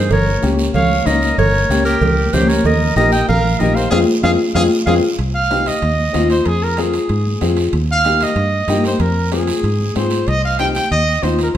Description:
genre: latin, cumbia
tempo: 189 BPM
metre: 4/4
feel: straight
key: F minor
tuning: A4 = 440 Hz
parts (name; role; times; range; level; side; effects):
- clear clarinet; melody; 0.0-4.9 s; Bb4 to G5; -19 LUFS; right 1 dB; none
- clear trumpet; second line; 0.0-11.6 s; G4 to G5; -20 LUFS; right 1 dB; none
- fingered electric bass; bass; 0.0-11.6 s; G1 to Ab2; -18 LUFS; equal; none
- congas; percussion; 0.1-11.4 s; none; -23 LUFS; right 2 dB; none
- cowbell and timbales; percussion; 0.1-11.6 s; none; -28 LUFS; right 6 dB; none
- guiro; percussion; 0.1-11.6 s; none; -31 LUFS; right 5 dB; none
- warm upright piano; accompaniment; 0.4-11.5 s; Ab3 to Ab4; -19 LUFS; left 4 dB; none
room: wet large studio reverb, RT60 1.2 s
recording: none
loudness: -13 LUFS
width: side -11 dB against mid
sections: 0.0-5.2 A section; 5.2-11.6 B section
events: band accent 3.9-5.2; drum fill 4.6-5.2; trumpet solo 5.2-11.6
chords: 0.1 Gdim; 2.7 Eb; 3.9 Fm; 5.2 Cm; 6.5 Fm; 7.7 Eb; 9.0 Fm; 10.3 Cm

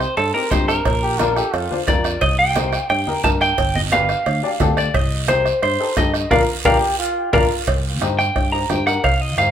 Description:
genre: latin, cumbia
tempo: 176 BPM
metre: 4/4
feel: straight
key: C dorian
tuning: A4 = 440 Hz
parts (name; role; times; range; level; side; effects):
- clean electric guitar; melody; 0.0-9.5 s; A4 to Bb5; -19 LUFS; right 1 dB; spring reverb
- fingered electric bass; bass; 0.0-9.5 s; G1 to G2; -24 LUFS; equal; none
- bombo; percussion; 0.0-9.5 s; none; -23 LUFS; equal; none
- guiro; percussion; 0.0-9.5 s; none; -30 LUFS; right 7 dB; none
- congas; percussion; 0.2-9.5 s; none; -28 LUFS; right 2 dB; none
- cowbell and timbales; percussion; 0.2-9.2 s; none; -26 LUFS; right 6 dB; none
- clear upright piano; accompaniment; 0.3-9.5 s; C4 to D5; -23 LUFS; left 6 dB; none
- clear trombone; second line; 1.0-1.8, 6.7-7.7 s; F4 to G4; -25 LUFS; equal; tape echo
room: wet studio ambience, RT60 0.5 s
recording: band playing live in one room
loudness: -16 LUFS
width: side -9 dB against mid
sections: 0.0-7.7 A section; 7.7-9.5 B section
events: band accent 6.3-7.7; drum fill 7.0-7.7; clean electric guitar solo 7.7-9.5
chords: 0.0 Cm; 0.9 Bb; 2.2 Cm; 3.6 G7; 4.9 Cm; 6.3 Bb; 7.7 Cm

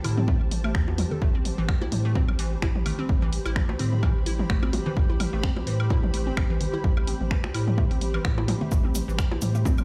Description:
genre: minimal techno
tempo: 128 BPM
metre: 4/4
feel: swing 55% on 16ths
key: A minor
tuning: A4 = 438 Hz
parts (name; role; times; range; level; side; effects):
- hollow square pluck; riff; 0.0-9.7 s; E3 to A4; -36 LUFS; equal; chorus, sidechain pumping, digital delay
- saturated sub bass; bass; 0.0-9.8 s; A1 to A2; -30 LUFS; equal; sidechain pumping
- punchy analog drum machine; drums; 0.0-9.5 s; finger snaps, hi-hat; -37 LUFS; equal; studio reverb
- electronic congas, woodblock, toms and bongos; percussion; 0.0-9.8 s; none; -34 LUFS; equal; studio reverb, digital delay
- granular cloud pad; texture; 0.0-9.8 s; G4 to B5; -38 LUFS; equal; built-in reverb, sidechain pumping
- electronic kick drum; drums; 0.3-9.8 s; none; -27 LUFS; equal; studio reverb
- cabasa; percussion; 8.7-9.8 s; none; -43 LUFS; equal; none
room: little or no reverb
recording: played on a big sound system in a bare room, stone room reverb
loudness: -25 LUFS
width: mono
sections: 0.0-9.8 A section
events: none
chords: 0.0 Am7

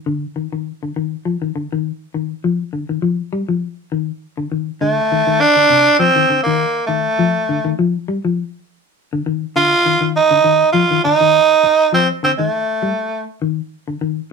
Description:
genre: afrobeat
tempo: 101 BPM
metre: 4/4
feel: swing 54% on 16ths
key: F mixolydian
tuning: A4 = 440 Hz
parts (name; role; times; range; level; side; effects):
- clean electric guitar; arpeggios; 0.1-14.2 s; C3 to G3; -20 LUFS; left 6 dB; none
- raspy tenor saxophone; melody; 4.8-13.2 s; A3 to F4; -13 LUFS; right 3 dB; none
room: moderate studio reverb, RT60 0.5 s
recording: band playing live in one room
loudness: -14 LUFS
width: side -5 dB against mid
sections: 0.0-4.8 A section; 4.8-14.3 B section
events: none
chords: 0.0 F5

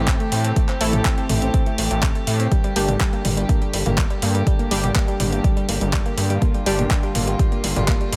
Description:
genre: melodic techno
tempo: 123 BPM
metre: 4/4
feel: straight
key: G dorian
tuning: A4 = 440 Hz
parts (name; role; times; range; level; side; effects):
- warm chamber string section; sustained chords; 0.0-8.2 s; D3 to G4; -32 LUFS; equal; sidechain pumping
- synth brass stab; stabs; 0.0-8.2 s; G3 to A4; -30 LUFS; equal; chorus, sidechain pumping, tape echo
- gritty driven synth bass; bass; 0.0-8.2 s; G1 to A2; -25 LUFS; equal; tube saturation, sidechain pumping
- woody wave-folded pluck; arpeggios; 0.1-8.2 s; G3 to C5; -29 LUFS; equal; chorus, sidechain pumping, tape echo
- deep house drum kit; drums; 0.1-8.2 s; handclaps, hi-hat, toms; -27 LUFS; equal; sidechain pumping on hats, sidechain pumping on toms
- electronic kick drum; drums; 0.1-8.0 s; none; -22 LUFS; equal; none
room: light reverb, digital ambience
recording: none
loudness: -20 LUFS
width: mono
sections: 0.0-8.2 A section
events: none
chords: 0.0 Am7; 2.5 Gmadd9

